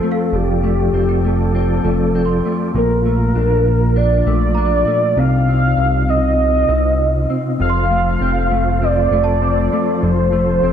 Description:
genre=dream pop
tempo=99 BPM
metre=4/4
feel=straight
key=F major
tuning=A4 = 440 Hz
part: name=warm velvety synth lead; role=melody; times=0.0-10.7 s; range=G4 to F5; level=-18 LUFS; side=equal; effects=chorus, tape echo
part: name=mellow tonewheel organ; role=sustained chords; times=0.0-10.7 s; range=Bb2 to D5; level=-23 LUFS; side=right 3 dB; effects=chorus vibrato, fast rotary speaker
part: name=mellow electric guitar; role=arpeggios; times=0.0-10.7 s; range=F2 to F4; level=-20 LUFS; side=left 4 dB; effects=ensemble chorus, tape echo
part: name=worn celesta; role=texture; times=0.0-10.7 s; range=D5 to C6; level=-31 LUFS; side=right 6 dB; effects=tape echo
part: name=fat analog bass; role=bass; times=0.3-10.7 s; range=F1 to C2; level=-18 LUFS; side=right 1 dB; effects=none
room=moderate recital hall reverb, RT60 1.6 s, digital ambience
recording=dark, warm production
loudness=-14 LUFS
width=side -8 dB against mid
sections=0.0-10.7 A section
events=none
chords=0.0 F; 2.8 Bbmaj7; 5.2 Cm; 7.6 F

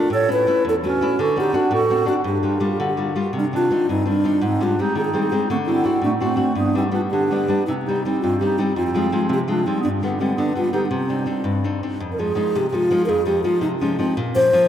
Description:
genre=italian folk, Italian serenade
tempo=112 BPM (dotted quarters)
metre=6/8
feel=rubato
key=C harmonic minor from 3.3 s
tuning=A4 = 444 Hz
part: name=breathy mellow alto flute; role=melody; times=0.0-14.7 s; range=C4 to C#5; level=-21 LUFS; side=equal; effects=none
part: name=mellow clarinet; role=second line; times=0.0-11.6 s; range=G3 to A4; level=-25 LUFS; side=right 3 dB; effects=none
part: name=nylon-string guitar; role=accompaniment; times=0.0-14.7 s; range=E2 to F#4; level=-22 LUFS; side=left 2 dB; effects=none
room=wet cathedral reverb, RT60 5.5 s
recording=in a vast, echoing space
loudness=-18 LUFS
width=side -10 dB against mid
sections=0.0-3.3 A section; 3.3-12.0 B section; 12.0-14.7 C section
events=none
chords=0.1 A; 1.2 D7; 2.2 Gm7; 3.3 Cmadd9; 4.4 Abmaj7; 5.5 D7; 6.6 G; 7.7 Cm; 8.8 Fmadd9; 9.8 G; 10.9 Cmadd9; 12.0 Fm7; 14.2 Bbm

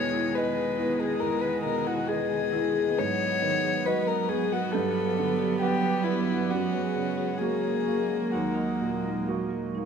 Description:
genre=neoclassical piano and strings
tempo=61-71 BPM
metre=4/4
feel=rubato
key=unclear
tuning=A4 = 440 Hz
part: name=dark violin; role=melody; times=0.0-9.3 s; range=E4 to C#5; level=-28 LUFS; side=left 7 dB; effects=none
part: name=dark cello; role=second line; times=0.0-9.9 s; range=D#3 to F#3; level=-33 LUFS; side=right 8 dB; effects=none
part: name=clear upright piano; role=accompaniment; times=0.0-9.9 s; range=D#2 to F#5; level=-33 LUFS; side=right 7 dB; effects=none
part: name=warm viola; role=accompaniment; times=0.0-9.9 s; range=G#3 to B3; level=-34 LUFS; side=right 2 dB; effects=none
part: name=phased analog pad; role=sustained chords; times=0.0-9.9 s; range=G#3 to F#5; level=-36 LUFS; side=right 1 dB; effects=phaser, chorus
part: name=marimba with medium mallets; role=arpeggios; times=0.0-9.9 s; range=D#4 to F#5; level=-36 LUFS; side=left 2 dB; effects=none
room=moderate recital hall reverb, RT60 1.8 s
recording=minimal, uncompressed stereo recording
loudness=-24 LUFS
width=side -7 dB against mid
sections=0.0-9.9 A section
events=none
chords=0.0 Emaj7; 3.0 G#m7; 4.7 Gmaj7; 6.5 F#add9; 8.3 D#m

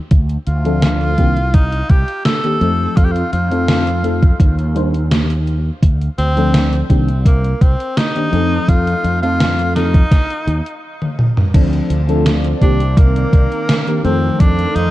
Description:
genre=vaporwave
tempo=84 BPM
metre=4/4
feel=straight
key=unclear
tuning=A4 = 440 Hz
part: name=fretless electric bass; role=bass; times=0.1-14.9 s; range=C2 to F2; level=-16 LUFS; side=equal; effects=ensemble chorus
part: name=electronic kick drum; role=drums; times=0.1-14.5 s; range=none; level=-11 LUFS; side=equal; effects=overdrive
part: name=gated 80s digital drum machine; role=drums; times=0.1-14.9 s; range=crash cymbal, hi-hat, snare drum, toms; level=-18 LUFS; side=equal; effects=gated reverb, gated reverb snare, overdrive
part: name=bright tenor saxophone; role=melody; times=0.5-14.9 s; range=Bb3 to A4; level=-21 LUFS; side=equal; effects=tape echo
part: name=mellow FM electric piano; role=accompaniment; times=0.6-14.9 s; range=Eb3 to C5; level=-20 LUFS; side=left 2 dB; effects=lush chorus
part: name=lush unison pad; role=sustained chords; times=11.9-14.9 s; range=Eb3 to F5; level=-24 LUFS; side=right 2 dB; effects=chorus, phaser
room=digital ambience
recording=dark, warm production, cassette tape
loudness=-12 LUFS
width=side -16 dB against mid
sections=0.0-11.5 A section; 11.5-14.9 B section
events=drum fill 11.0-11.5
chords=0.1 Dm7; 1.2 Cm9; 2.6 F7; 4.4 Ebmaj7; 5.8 Dm7; 6.9 Cm9; 8.3 F7; 10.1 N.C.; 11.5 Dm7; 12.6 Cm9; 14.0 F7

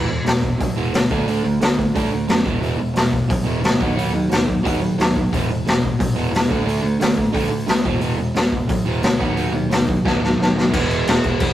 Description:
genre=punk rock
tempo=178 BPM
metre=4/4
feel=straight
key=unclear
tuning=A4 = 436 Hz
part: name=crunchy overdriven guitar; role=riff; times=0.0-11.5 s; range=E2 to D4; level=-22 LUFS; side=right 4 dB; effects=none
part: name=sludgy distorted guitar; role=riff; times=0.0-11.5 s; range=E2 to D4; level=-27 LUFS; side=left 5 dB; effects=overdrive
part: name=modern bright picked electric bass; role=bass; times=0.0-11.5 s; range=E1 to F#2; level=-25 LUFS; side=equal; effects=none
part: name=raw garage drum kit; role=drums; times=0.3-11.5 s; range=crash cymbal, hi-hat, kick drum, snare drum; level=-19 LUFS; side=left 1 dB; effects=none
part: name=overdriven electric guitar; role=melody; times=10.8-11.5 s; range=B3 to F#5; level=-26 LUFS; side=right 3 dB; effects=none
room=light reverb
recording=rough rehearsal-room recording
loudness=-16 LUFS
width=side -13 dB against mid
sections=0.0-10.7 A section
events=drum fill 10.1-10.7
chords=0.0 E5; 1.1 D5; 2.5 E5; 3.8 B/D#; 5.3 E5; 6.5 D5; 7.9 E5; 9.2 B/D#; 10.7 E5

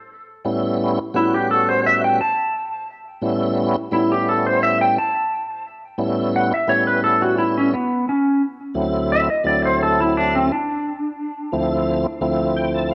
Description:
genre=blues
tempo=87 BPM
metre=4/4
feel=straight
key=A mixolydian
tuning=A4 = 440 Hz
part: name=tonewheel organ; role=accompaniment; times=0.4-12.9 s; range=D2 to A5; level=-23 LUFS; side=equal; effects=slow rotary speaker, overdrive, chorus vibrato
part: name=clean lap steel guitar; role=melody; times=1.2-12.5 s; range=B3 to A5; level=-21 LUFS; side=equal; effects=none
room=moderate echo chamber reverb, RT60 1.6 s, digital ambience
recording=none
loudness=-20 LUFS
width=mono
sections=0.0-12.9 A section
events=tonewheel organ fill 12.2-12.9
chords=0.0 A9; 8.8 D9; 11.5 Dm7

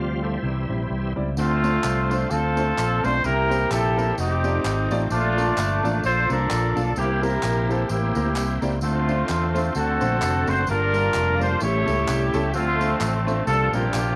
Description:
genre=uptempo gospel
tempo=129 BPM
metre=4/4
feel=swing 56% on 8ths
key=unclear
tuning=A4 = 440 Hz
part: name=warm grand piano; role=accompaniment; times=0.0-14.2 s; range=G2 to F5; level=-31 LUFS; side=equal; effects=none
part: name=bright tonewheel organ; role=sustained chords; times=0.0-14.2 s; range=E3 to D5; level=-35 LUFS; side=equal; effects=slow rotary speaker, chorus vibrato
part: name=fingered electric bass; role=bass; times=0.0-14.2 s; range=F1 to E2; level=-27 LUFS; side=equal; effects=none
part: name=mellow horn section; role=melody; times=1.4-14.2 s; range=A3 to C#5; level=-25 LUFS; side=equal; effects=none
part: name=tambourine and handclaps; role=percussion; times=1.4-14.1 s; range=none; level=-38 LUFS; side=equal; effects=none
room=light reverb, studio ambience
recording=none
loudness=-22 LUFS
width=mono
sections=0.0-1.4 A section; 1.4-14.2 B section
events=tonewheel organ solo 0.0-1.4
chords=0.4 C; 1.4 Dm7; 3.2 C7; 4.2 F13; 5.1 Bbmaj7; 7.0 C7; 8.8 Dm7; 9.8 D7; 10.7 Gm7; 11.6 A7; 12.5 Dm7; 13.5 C9sus4

